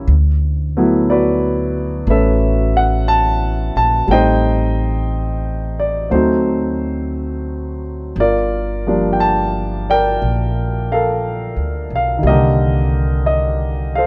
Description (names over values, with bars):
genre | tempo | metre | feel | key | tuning
jazz ballad | 59 BPM | 4/4 | swing 68% on 8ths | unclear | A4 = 440 Hz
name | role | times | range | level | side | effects
warm grand piano | accompaniment | 0.0-14.1 s | D3 to A5 | -19 LUFS | equal | none
upright bass | bass | 0.0-14.1 s | G1 to D2 | -21 LUFS | equal | none
room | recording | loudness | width
little or no reverb | dry, close 1970s-style studio recording | -17 LUFS | mono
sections
0.0-14.1 A section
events
none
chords
0.1 D6; 4.1 Am7b5; 6.1 D7b9; 8.2 Gm9; 12.2 Cm7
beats
| 0.09 1.08 2.08 3.09 | 4.09 5.11 6.12 7.14 | 8.17 9.19 10.21 11.22 | 12.23 13.24